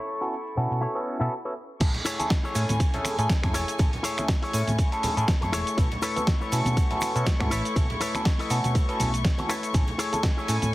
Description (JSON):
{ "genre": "filtered disco house", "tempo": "121 BPM", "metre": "4/4", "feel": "swing 56% on 16ths", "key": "unclear", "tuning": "A4 = 440 Hz", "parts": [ { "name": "rich chamber string section", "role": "sustained chords", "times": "0.0-10.7 s", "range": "A3 to C#6", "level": "-33 LUFS", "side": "left 2 dB", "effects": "sidechain pumping, low-pass filter" }, { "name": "electric guitar with an envelope filter", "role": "riff", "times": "0.0-10.6 s", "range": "E4 to E5", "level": "-31 LUFS", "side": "left 2 dB", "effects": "vintage 12-bit sampler grit, sidechain pumping, low-pass filter" }, { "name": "barky tine electric piano", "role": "accompaniment", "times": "0.2-10.7 s", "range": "A3 to G#5", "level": "-30 LUFS", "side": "equal", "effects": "phaser, sidechain pumping, low-pass filter" }, { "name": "dusty soul sampler-style drum kit", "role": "drums", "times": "0.2-10.7 s", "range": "crash cymbal, finger snaps, hi-hat, ride cymbal, shaker, snare drum", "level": "-31 LUFS", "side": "right 1 dB", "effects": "sidechain pumping on perc, low-pass filter on perc, sidechain pumping on hats, low-pass filter on hats, sidechain pumping on cymbals, low-pass filter on cymbals, low-pass filter on snare, low-pass filter on room" }, { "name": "hollow-body short-scale fingered electric bass", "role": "bass", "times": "0.6-10.7 s", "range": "E1 to B2", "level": "-28 LUFS", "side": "equal", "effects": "sidechain pumping, low-pass filter" }, { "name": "electronic kick drum", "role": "drums", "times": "1.8-10.3 s", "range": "none", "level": "-24 LUFS", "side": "equal", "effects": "none" }, { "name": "congas and tube shaker", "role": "percussion", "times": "1.8-10.7 s", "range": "none", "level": "-36 LUFS", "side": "right 1 dB", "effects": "sidechain pumping on perc, low-pass filter on perc" } ], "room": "light reverb", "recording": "heavily compressed radio sound, multiband compression", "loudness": "-23 LUFS", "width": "side -17 dB against mid", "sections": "0.0-1.8 A section; 1.8-10.7 B section", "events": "break 1.3-1.8; drop 1.8-10.7", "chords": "0.0 B9sus4; 1.8 Amaj7; 5.8 B9sus4; 9.7 Amaj7" }